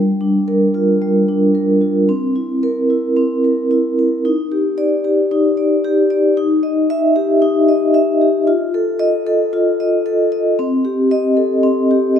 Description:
classical, contemporary piece for solo vibraphone; 113 BPM; 4/4; rubato; A4 = 440 Hz
vibraphone with medium mallets; solo; 0.0-12.2 s; G3 to E5; -13 LUFS; equal
moderate recital hall reverb, RT60 1.6 s; -13 LUFS; side -8 dB against mid
0.0-12.2 A section
0.0 Gm7; 2.1 C7; 4.2 Ebmaj7; 6.4 Eb; 8.5 F7; 10.6 Cm6

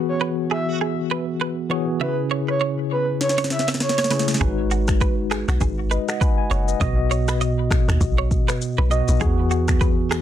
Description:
afrobeats; 100 BPM; 4/4; swing 58% on 16ths; C# minor; A4 = 440 Hz
tine electric piano; accompaniment; 0.0-10.2 s; B2 to B5; -24 LUFS; left 2 dB; medium stereo tremolo
direct-recorded clean electric guitar; riff; 0.0-10.2 s; F#4 to E5; -28 LUFS; right 6 dB; analog chorus, ping-pong delay
breathy flute-like synth lead; melody; 0.1-4.3 s; B4 to E5; -26 LUFS; right 2 dB; chorus, plate reverb, ping-pong delay
afro-pop drum kit; drums; 3.2-10.2 s; finger snaps, kick drum, rim click, shaker, snare drum; -22 LUFS; equal
deep log drum bass; bass; 4.4-10.2 s; F#1 to E2; -22 LUFS; equal
light reverb; dense, heavily limited modern master; -19 LUFS; side -11 dB against mid
0.0-10.2 A section
drum fill 3.2-4.4
0.0 Eadd9; 2.0 C#m; 4.4 G#m7; 6.8 B; 9.2 Eadd9

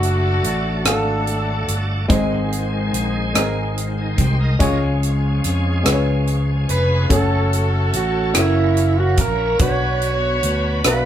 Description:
slow gospel; 48 BPM (dotted quarters); 6/8; straight; F# harmonic minor; A4 = 441 Hz
clean lap steel guitar; melody; 0.0-1.8, 6.7-11.1 s; E4 to C#5; -23 LUFS; right 5 dB
warm horn section; melody; 0.0-2.1, 6.7-11.1 s; A3 to C#5; -24 LUFS; left 1 dB
warm baby grand piano; accompaniment; 0.0-11.1 s; G#2 to F#5; -23 LUFS; left 2 dB
bright tonewheel organ; sustained chords; 0.0-11.1 s; D3 to D#5; -28 LUFS; right 1 dB; slow rotary speaker, chorus vibrato
fingered electric bass; bass; 0.0-11.1 s; E#1 to E#2; -20 LUFS; equal
tight funk drum kit; drums; 0.0-11.0 s; hi-hat, kick drum, rim click; -20 LUFS; equal
wet studio reverb, RT60 0.6 s; band playing live in one room; -16 LUFS; side -10 dB against mid
0.0-11.1 A section
0.0 D/F#; 2.1 G#; 4.6 C#; 7.1 F#m; 8.4 F#7; 9.6 Bm

